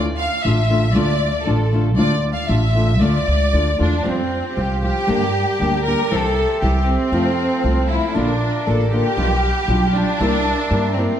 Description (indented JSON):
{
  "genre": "mexican folk, mariachi",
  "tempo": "117 BPM",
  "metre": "2/4",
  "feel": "straight",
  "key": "D harmonic minor, F major from 4.0 s",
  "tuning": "A4 = 440 Hz",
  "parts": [
    { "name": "clear symphonic violin section", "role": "melody", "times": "0.0-11.2 s", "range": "C4 to F5", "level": "-20 LUFS", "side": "equal", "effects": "none" },
    { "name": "flamenco guitar", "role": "accompaniment", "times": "0.0-11.1 s", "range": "F2 to G4", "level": "-22 LUFS", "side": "left 2 dB", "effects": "none" },
    { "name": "upright bass", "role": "bass", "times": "0.0-11.0 s", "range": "A1 to G2", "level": "-19 LUFS", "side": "equal", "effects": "none" },
    { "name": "pedal harmonium", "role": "sustained chords", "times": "4.1-11.2 s", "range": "F4 to C6", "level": "-29 LUFS", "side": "right 1 dB", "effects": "none" }
  ],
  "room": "moderate scoring stage reverb, RT60 1.9 s",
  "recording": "dark, warm production",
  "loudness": "-16 LUFS",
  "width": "side -10 dB against mid",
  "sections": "0.0-4.0 A section; 4.0-11.2 B section",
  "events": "none",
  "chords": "0.0 Dm; 4.0 Fsus2; 5.1 Gm; 6.1 C; 7.1 F; 8.2 Bb; 9.2 G7/B; 10.2 C7"
}